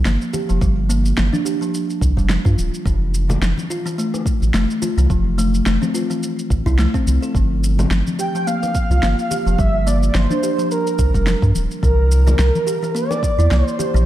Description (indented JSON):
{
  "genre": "organic downtempo",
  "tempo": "107 BPM",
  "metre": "4/4",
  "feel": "swing 56% on 16ths",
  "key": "G dorian",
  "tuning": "A4 = 440 Hz",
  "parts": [
    { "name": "round analog bass", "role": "bass", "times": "0.0-14.0 s", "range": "D1 to G2", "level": "-16 LUFS", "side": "equal", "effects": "sidechain pumping" },
    { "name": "kalimba", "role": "arpeggios", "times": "0.1-14.1 s", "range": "E3 to A4", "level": "-22 LUFS", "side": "equal", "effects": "digital delay" },
    { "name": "electronic snare drum and shaker", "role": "drums", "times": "0.1-14.1 s", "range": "none", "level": "-26 LUFS", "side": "equal", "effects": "none" },
    { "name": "congas and bongos", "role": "percussion", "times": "0.3-13.9 s", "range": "none", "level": "-28 LUFS", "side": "left 3 dB", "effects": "none" },
    { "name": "electronic kick drum", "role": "drums", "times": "0.6-13.4 s", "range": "none", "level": "-20 LUFS", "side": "equal", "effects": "none" },
    { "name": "breathy flute-like synth lead", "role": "melody", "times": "8.2-14.1 s", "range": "Bb4 to G5", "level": "-22 LUFS", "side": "right 1 dB", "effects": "tremolo, ensemble chorus, digital delay" }
  ],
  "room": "light reverb",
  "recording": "dark, warm production",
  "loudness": "-16 LUFS",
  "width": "side -13 dB against mid",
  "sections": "0.0-14.1 A section",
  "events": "none",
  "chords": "0.0 Gm7; 2.9 Fmaj7; 7.3 G7(no3); 11.8 C7",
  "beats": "0.06 | 0.62 1.18 1.74 2.30 | 2.86 3.42 3.98 4.54 | 5.10 5.66 6.22 6.79 | 7.34 7.91 8.47 9.03 | 9.59 10.15 10.71 11.27 | 11.83 12.39 12.95 13.51"
}